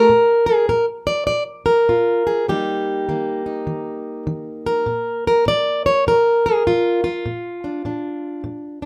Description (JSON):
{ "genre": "acoustic country blues, solo or duo", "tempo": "101 BPM", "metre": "4/4", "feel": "swing 63% on 8ths", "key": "Bb major", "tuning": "A4 = 440 Hz", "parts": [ { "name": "fingerpicked plugged-in steel-string acoustic guitar", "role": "solo", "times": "0.0-8.9 s", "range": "Bb2 to D5", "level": "-19 LUFS", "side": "equal", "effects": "none" } ], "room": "light reverb", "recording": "none", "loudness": "-19 LUFS", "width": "mono", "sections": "0.1-8.9 A section", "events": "none", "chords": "0.1 Bb5; 2.5 Eb; 4.9 Bb" }